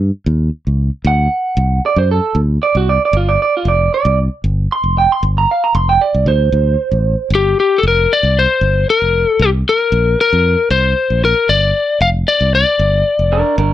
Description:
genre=blues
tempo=115 BPM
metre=4/4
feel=straight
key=G minor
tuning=A4 = 440 Hz
part: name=fingered electric bass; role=bass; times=0.0-13.7 s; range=F1 to F#2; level=-14 LUFS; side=equal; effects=none
part: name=electric guitar through a small old amp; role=second line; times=1.1-7.3, 13.3-13.7 s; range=D4 to C6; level=-14 LUFS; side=right 5 dB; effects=none
part: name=lightly driven lead guitar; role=melody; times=7.3-13.5 s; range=G4 to F5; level=-12 LUFS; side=left 4 dB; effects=none
room=light reverb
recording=none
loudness=-12 LUFS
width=side -12 dB against mid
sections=0.0-7.3 A section; 7.3-13.7 B section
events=clean electric guitar solo 0.0-7.3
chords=0.0 Eb7; 1.0 D7; 3.1 Bb69/F (rootless); 6.3 D5; 7.3 Gm7; 9.4 Bbsus2; 11.5 G7(no3)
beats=0.00 0.53 | 1.05 1.57 2.09 2.61 | 3.13 3.66 4.18 4.70 | 5.22 5.75 6.27 6.79 | 7.31 7.83 8.36 8.88 | 9.40 9.92 10.45 10.97 | 11.49 12.01 12.54 13.06 | 13.58

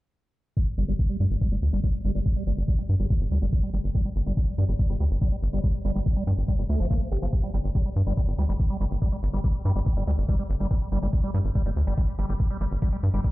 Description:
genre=psychedelic trance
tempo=142 BPM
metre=4/4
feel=straight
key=unclear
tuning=A4 = 440 Hz
part: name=liquid acid bass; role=riff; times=0.6-13.3 s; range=F3 to G4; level=-33 LUFS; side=equal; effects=phaser, auto-pan, sidechain pumping, tape echo
part: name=electronic hi-hat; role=drums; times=0.6-13.3 s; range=none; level=-67 LUFS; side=right 3 dB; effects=none
part: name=electronic kick drum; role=drums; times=0.6-13.3 s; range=none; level=-24 LUFS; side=equal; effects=studio reverb
part: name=tight sequencer bass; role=bass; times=0.8-13.2 s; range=G1 to G2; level=-24 LUFS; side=equal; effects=none
room=little or no reverb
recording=played on a big sound system in a bare room, large studio reverb, low-pass filter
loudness=-23 LUFS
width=side -18 dB against mid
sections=0.6-13.3 A section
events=filter sweep on acid bass 0.6-13.3; filter sweep 0.6-13.3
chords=0.6 G5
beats=| 0.57 0.99 1.41 1.83 | 2.26 2.68 3.10 3.52 | 3.95 4.37 4.79 5.21 | 5.64 6.06 6.48 6.91 | 7.33 7.75 8.17 8.60 | 9.02 9.44 9.86 10.29 | 10.71 11.13 11.55 11.98 | 12.40 12.82 13.24

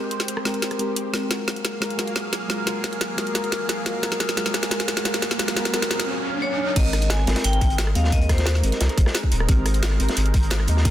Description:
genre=liquid drum and bass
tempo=176 BPM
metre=4/4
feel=straight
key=unclear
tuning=A4 = 440 Hz
part: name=deep mellow chord stab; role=accompaniment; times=0.0-10.9 s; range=Ab3 to Eb5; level=-28 LUFS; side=left 1 dB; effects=lush chorus, tape echo
part: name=lush unison pad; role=sustained chords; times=0.0-10.9 s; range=Gb3 to F5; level=-31 LUFS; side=right 1 dB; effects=chorus, phaser, sidechain pumping
part: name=drum and bass drum kit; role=drums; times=0.1-10.9 s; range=crash cymbal, hi-hat, rim click, snare drum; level=-25 LUFS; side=equal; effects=none
part: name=riser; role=sound effects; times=4.1-6.8 s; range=none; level=-32 LUFS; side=equal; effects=none
part: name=vibraphone with hard mallets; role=melody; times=6.4-8.6 s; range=C5 to Ab5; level=-28 LUFS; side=left 2 dB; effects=digital delay
part: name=saturated sub bass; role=bass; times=6.8-10.9 s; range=Eb1 to Eb2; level=-21 LUFS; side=equal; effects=none
part: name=crunchy breakbeat drum kit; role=drums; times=6.8-10.9 s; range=hi-hat, snare drum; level=-30 LUFS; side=equal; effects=high-pass filter on hats, high-pass filter on snare, high-pass filter on room
part: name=electronic kick drum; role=drums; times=6.8-10.9 s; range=none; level=-19 LUFS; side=equal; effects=none
room=moderate concert hall reverb, RT60 2.2 s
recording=dense, heavily limited modern master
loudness=-20 LUFS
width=side -12 dB against mid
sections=0.0-6.8 A section; 6.8-10.9 B section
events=build-up 0.0-6.8; drum fill 0.0-6.1; riser 4.1-6.8; drop 6.8-10.9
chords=0.0 Abmaj9; 1.3 Gbmaj9; 6.8 Abmaj9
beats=0.28 0.62 0.97 | 1.31 1.65 1.99 2.33 | 2.67 3.01 3.35 3.69 | 4.03 4.38 4.72 5.06 | 5.40 5.74 6.08 6.42 | 6.76 7.10 7.44 7.78 | 8.12 8.47 8.81 9.15 | 9.49 9.83 10.17 10.51 | 10.85

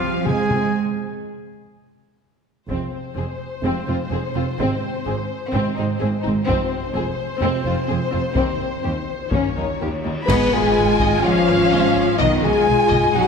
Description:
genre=cinematic, epic orchestral film score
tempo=126 BPM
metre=4/4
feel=straight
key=F minor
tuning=A4 = 440 Hz
part: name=warm symphonic violin section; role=melody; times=0.0-13.2 s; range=F#4 to Ab5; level=-29 LUFS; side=left 5 dB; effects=none
part: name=warm symphonic violin section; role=second line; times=0.0-13.3 s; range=C4 to B5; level=-26 LUFS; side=left 3 dB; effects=none
part: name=dark French horn section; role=sustained chords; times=0.0-13.3 s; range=F3 to B4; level=-24 LUFS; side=left 6 dB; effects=none
part: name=warm trombone section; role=sustained chords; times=0.0-13.3 s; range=C3 to B3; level=-28 LUFS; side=right 1 dB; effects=none
part: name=warm trumpet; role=stabs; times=0.0-0.7 s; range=F4 to Ab4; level=-25 LUFS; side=right 1 dB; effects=none
part: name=rich symphonic cello section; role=bass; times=0.0-13.3 s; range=Eb2 to B3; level=-26 LUFS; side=right 4 dB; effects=none
part: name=rich symphonic viola section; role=accompaniment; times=0.3-13.3 s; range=C3 to G#4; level=-27 LUFS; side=right 1 dB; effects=none
part: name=clear symphonic double bass section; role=bass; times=0.3-13.2 s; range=F1 to F2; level=-26 LUFS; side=right 4 dB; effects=none
part: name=taiko ensemble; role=drums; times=0.3-13.3 s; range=none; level=-27 LUFS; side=left 1 dB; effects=none
part: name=cymbal swell, clash cymbals and concert bass drum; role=percussion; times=6.5-11.2 s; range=none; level=-32 LUFS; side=left 1 dB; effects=none
part: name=concert flute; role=second line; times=10.3-13.3 s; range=D#5 to B5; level=-24 LUFS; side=left 1 dB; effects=none
part: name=impact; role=sound effects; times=10.3-12.2 s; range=none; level=-32 LUFS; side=left 1 dB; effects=none
room=wet scoring stage reverb, RT60 1.8 s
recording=heavily compressed radio sound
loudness=-18 LUFS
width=side -6 dB against mid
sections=0.0-2.7 A section; 2.7-10.3 B section; 10.3-13.3 C section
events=break 0.8-2.7; band accent 10.3-10.8; impact 10.3-12.2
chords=0.0 Fm; 0.8 N.C.; 2.7 Fm; 4.6 Ab; 6.5 Fm; 8.4 Cm/Eb; 9.3 Eb7; 10.3 G#m; 12.2 B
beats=0.27 | 0.75 1.24 1.73 2.21 | 2.69 3.17 3.64 4.12 | 4.59 5.06 5.54 6.01 | 6.48 6.95 7.42 7.89 | 8.36 8.84 9.32 9.80 | 10.29 10.76 11.24 11.72 | 12.20 12.68 13.15

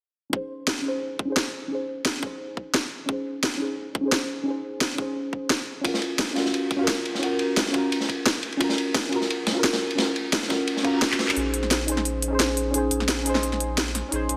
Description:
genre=liquid drum and bass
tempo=174 BPM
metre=4/4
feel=straight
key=unclear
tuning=A4 = 441 Hz
part: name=deep mellow chord stab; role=accompaniment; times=0.3-14.4 s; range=Db4 to C5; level=-29 LUFS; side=equal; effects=chorus, digital delay
part: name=electronic kick drum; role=drums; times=0.3-10.9 s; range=none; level=-31 LUFS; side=equal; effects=high-pass filter on kick
part: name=drum and bass drum kit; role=drums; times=0.7-14.4 s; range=handclaps, hi-hat, snare drum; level=-27 LUFS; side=equal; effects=none
part: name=crunchy breakbeat drum kit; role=drums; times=5.8-11.3 s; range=ride cymbal, snare drum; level=-31 LUFS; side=equal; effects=high-pass filter on cymbals, high-pass filter on snare, high-pass filter on room
part: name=reverse cymbal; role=sound effects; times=10.8-11.4 s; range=none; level=-38 LUFS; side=equal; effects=none
part: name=sub bass with octave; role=bass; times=11.4-14.4 s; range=Bb1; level=-32 LUFS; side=equal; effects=none
room=moderate scoring stage reverb, RT60 1.5 s, small room ambience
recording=dense, heavily limited modern master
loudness=-25 LUFS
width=mono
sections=0.3-11.4 A section; 11.4-14.4 B section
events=filter sweep on synth stab 0.3-11.4; reverse cymbal 10.8-11.4; drum fill 11.1; build-up 11.4-14.4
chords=0.3 Abadd11/Db; 5.8 Gbmaj7/Db; 11.4 Bbm11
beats=| 0.33 0.68 1.02 1.36 | 1.71 2.05 2.40 2.74 | 3.09 3.43 3.78 4.12 | 4.47 4.81 5.16 5.50 | 5.85 6.19 6.54 6.88 | 7.23 7.57 7.92 8.26 | 8.61 8.95 9.29 9.64 | 9.98 10.33 10.68 11.02 | 11.36 11.71 12.05 12.40 | 12.74 13.09 13.43 13.78 | 14.12

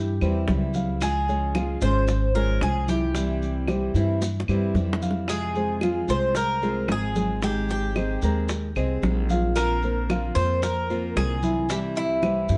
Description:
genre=latin, Cuban son and guajira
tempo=112 BPM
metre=4/4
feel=straight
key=unclear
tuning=A4 = 440 Hz
part: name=Cuban tres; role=melody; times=0.0-12.6 s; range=E4 to C5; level=-30 LUFS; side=equal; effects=plate reverb
part: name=dark concert grand piano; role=arpeggios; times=0.0-12.6 s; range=E3 to Bb5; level=-31 LUFS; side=equal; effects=none
part: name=upright bass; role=bass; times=0.0-12.6 s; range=Ab1 to G2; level=-29 LUFS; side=equal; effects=none
part: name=picked steel-string acoustic guitar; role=accompaniment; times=0.2-12.6 s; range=C3 to Ab4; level=-34 LUFS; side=equal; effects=none
part: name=bongos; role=percussion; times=0.2-12.6 s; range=none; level=-34 LUFS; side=equal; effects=none
part: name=claves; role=percussion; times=0.2-12.5 s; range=none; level=-41 LUFS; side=equal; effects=none
part: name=congas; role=percussion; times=0.2-12.6 s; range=none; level=-34 LUFS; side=equal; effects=none
part: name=maracas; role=percussion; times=0.2-12.6 s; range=none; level=-44 LUFS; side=equal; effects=none
room=light reverb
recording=dark, warm production, nothing above 11.0 kHz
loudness=-24 LUFS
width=mono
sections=0.0-12.6 A section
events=drum fill 4.2-5.3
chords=0.0 C; 1.0 Db; 3.1 C; 5.3 Fm; 7.4 Abadd9; 9.6 Bbadd9; 11.7 C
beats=0.48 | 1.01 1.55 2.08 2.62 | 3.15 3.68 4.22 4.75 | 5.29 5.82 6.36 6.89 | 7.43 7.96 8.49 9.03 | 9.56 10.10 10.63 11.16 | 11.70 12.23

